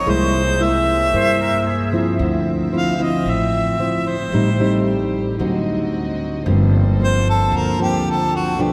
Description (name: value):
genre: bossa nova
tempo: 113 BPM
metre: 4/4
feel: straight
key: D minor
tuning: A4 = 442 Hz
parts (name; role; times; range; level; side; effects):
- warm harmonica; melody; 0.0-8.7 s; F#4 to F5; -23 LUFS; equal; none
- nylon-string guitar; accompaniment; 0.0-8.7 s; G2 to E4; -23 LUFS; equal; none
- warm chamber string section; sustained chords; 0.0-8.7 s; A3 to E5; -31 LUFS; equal; none
- upright bass; bass; 0.0-8.7 s; G1 to G2; -23 LUFS; equal; none
- breathy jazz flute; second line; 1.1-2.2 s; Ab4 to C5; -30 LUFS; equal; none
room: wet cathedral reverb, RT60 5.0 s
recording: recorded in a church or concert hall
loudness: -18 LUFS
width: mono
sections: 0.0-2.2 A section; 2.2-8.7 B section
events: harmonica solo 2.2-8.7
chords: 0.1 C7b13; 2.2 Dm9; 4.3 Am7b5; 5.4 D7b9; 6.5 Gm11